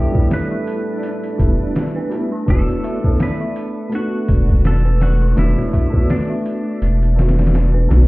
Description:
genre	trip hop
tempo	83 BPM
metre	4/4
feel	swing 56% on 16ths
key	unclear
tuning	A4 = 440 Hz
part	clean electric guitar	melody	0.0-6.8 s	D4 to B4	-31 LUFS	equal	tape echo
part	felt-muted upright piano	accompaniment	0.0-8.1 s	G3 to A4	-23 LUFS	equal	harmonic tremolo, vintage 12-bit sampler grit
part	deep dark ambient pad	sustained chords	0.0-8.1 s	A3 to A4	-28 LUFS	right 2 dB	chorus, built-in reverb, vintage 12-bit sampler grit
part	dark detuned synth bell	arpeggios	0.0-8.1 s	D4 to E5	-30 LUFS	equal	chorus, ping-pong delay
part	backwards swelling texture	texture	0.1-8.1 s	D4	-33 LUFS	right 1 dB	built-in reverb
part	trip hop sampler-style drum kit	drums	0.1-8.1 s	hi-hat, kick drum, snare drum	-18 LUFS	equal	overdrive, small room reverb
part	round analog bass	bass	1.4-8.1 s	E1 to B1	-14 LUFS	equal	none
room	little or no reverb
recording	heard muffled through a wall, club reverb, EQ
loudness	-15 LUFS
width	side -21 dB against mid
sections	0.0-8.1 A section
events	none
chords	0.0 Em7; 2.5 Bm7/E

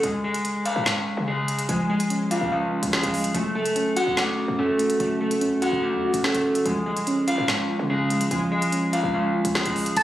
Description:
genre	hip hop, drill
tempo	145 BPM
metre	4/4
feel	half-time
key	unclear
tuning	A4 = 436 Hz
part	muted felt-like synth keys	accompaniment	0.0-10.0 s	E#3 to F#5	-25 LUFS	right 1 dB	chorus, low-pass filter
part	electric guitar at the edge of break-up	arpeggios	0.0-10.0 s	G#3 to F#5	-24 LUFS	left 1 dB	low-pass filter, ping-pong delay
part	short 808-style bass	bass	0.0-10.0 s	E#1 to C#3	-33 LUFS	equal	none
part	drill drum kit	drums	0.0-10.0 s	crash cymbal, hi-hat, snare drum	-28 LUFS	equal	none
part	warm velvety synth lead	second line	10.0 s	A5	-18 LUFS	right 1 dB	chorus
room	little or no reverb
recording	recorded on a phone in the room, studio reverb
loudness	-21 LUFS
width	side -13 dB against mid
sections	0.0-10.0 A section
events	break 0.0-1.7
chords	0.0 C#; 3.3 F#m; 6.7 C#

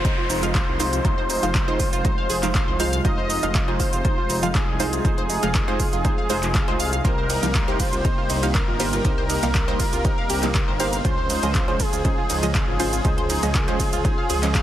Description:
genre	progressive house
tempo	120 BPM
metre	4/4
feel	straight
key	F minor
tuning	A4 = 444 Hz
part	wide unison lead	melody	0.0-14.6 s	Ab4 to Eb5	-27 LUFS	equal	sidechain pumping, dub echo
part	warm analog pad	sustained chords	0.0-14.6 s	C3 to C5	-31 LUFS	left 1 dB	chorus, sidechain pumping
part	tight sequenced synth	arpeggios	0.0-14.6 s	F3 to F5	-30 LUFS	left 1 dB	chorus, phaser, sidechain pumping, digital delay
part	wide unison pluck	stabs	0.0-14.6 s	Ab3 to F5	-28 LUFS	right 3 dB	sidechain pumping, digital delay
part	deep house drum kit	drums	0.0-14.6 s	handclaps, hi-hat, ride cymbal, shaker	-28 LUFS	right 1 dB	sidechain pumping on hats, sidechain pumping on perc, sidechain pumping on cymbals
part	electronic kick drum	drums	0.0-14.6 s	none	-23 LUFS	equal	none
part	downlifter and swell	sound effects	0.0-3.0, 14.3-14.6 s	none	-34 LUFS	left 1 dB	none
part	dark detuned saw bass	bass	0.3-14.6 s	F1 to Db2	-28 LUFS	equal	tube saturation, sidechain pumping
room	light reverb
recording	dense, heavily limited modern master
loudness	-19 LUFS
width	side -12 dB against mid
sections	0.0-14.6 A section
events	none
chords	0.0 Fm7; 7.0 Cm7; 11.0 Dbmaj7

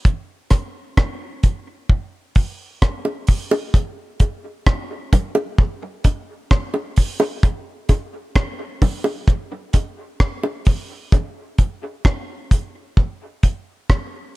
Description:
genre	reggae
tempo	65 BPM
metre	4/4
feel	straight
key	none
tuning	none
part	deep reggae drum kit	drums	0.0-14.1 s	hi-hat, kick drum, rim click	-16 LUFS	equal	none
part	bongos	percussion	3.0-10.6 s	none	-23 LUFS	right 1 dB	dub echo
room	little or no reverb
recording	echo-heavy mix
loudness	-18 LUFS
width	side -20 dB against mid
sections	0.0-14.4 A section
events	break 0.0-1.9; part muted 9.3-14.4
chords	none

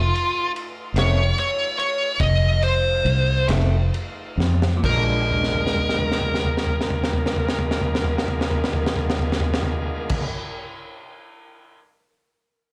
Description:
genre	slow blues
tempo	44-50 BPM (dotted quarters)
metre	12/8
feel	straight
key	Bb mixolydian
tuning	A4 = 441 Hz
part	smooth overdriven lead guitar	melody	0.0-10.3 s	F4 to Eb5	-26 LUFS	equal	slapback echo
part	bright tonewheel organ	sustained chords	0.0-10.3 s	Eb3 to Ab4	-37 LUFS	equal	slow rotary speaker, overdrive
part	fingered electric bass	bass	0.0-10.2 s	F1 to F2	-22 LUFS	equal	none
part	crunchy breakbeat drum kit	drums	0.2-11.8 s	crash cymbal, kick drum, ride cymbal, snare drum, toms	-28 LUFS	equal	none
part	electric guitar through a small old amp	accompaniment	1.0-10.3 s	F2 to D4	-32 LUFS	equal	harmonic tremolo
room	light reverb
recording	live gig heard through the venue's PA, club reverb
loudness	-22 LUFS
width	mono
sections	0.0-4.8 A section; 4.8-10.3 B section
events	slowing down 0.0-4.8; lead electric guitar solo 0.0-4.8; drum fill 4.4-4.8, 5.3-10.1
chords	0.0 F7; 4.8 Bb7

